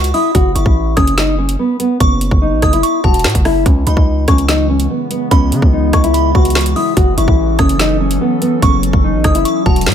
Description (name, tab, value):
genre	hip hop, drill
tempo	145 BPM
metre	4/4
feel	half-time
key	unclear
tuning	A4 = 440 Hz
part	nylon-string guitar	melody	0.0-9.9 s	B3 to F#4	-16 LUFS	left 2 dB	low-pass filter
part	delicate synth tine bell	second line	0.0-9.9 s	A5 to D#6	-21 LUFS	right 2 dB	chorus, phaser, ping-pong delay
part	distorted 808-style bass	bass	0.0-9.9 s	E1 to C#3	-16 LUFS	equal	distortion
part	drill drum kit	drums	0.0-9.9 s	hi-hat, kick drum, rim click, snare drum	-14 LUFS	equal	none
part	warbly tape-like pad	sustained chords	4.2-9.9 s	C#3 to A4	-20 LUFS	left 1 dB	chorus, built-in reverb
room	digital ambience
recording	none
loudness	-10 LUFS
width	side -9 dB against mid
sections	0.0-9.9 A section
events	none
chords	0.3 F#m7; 3.7 C#m7; 7.0 F#m7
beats	| 0.35 0.76 1.18 1.59 | 2.00 2.42 2.83 3.25 | 3.66 4.07 4.49 4.90 | 5.31 5.73 6.14 6.55 | 6.97 7.38 7.80 8.21 | 8.62 9.04 9.45 9.87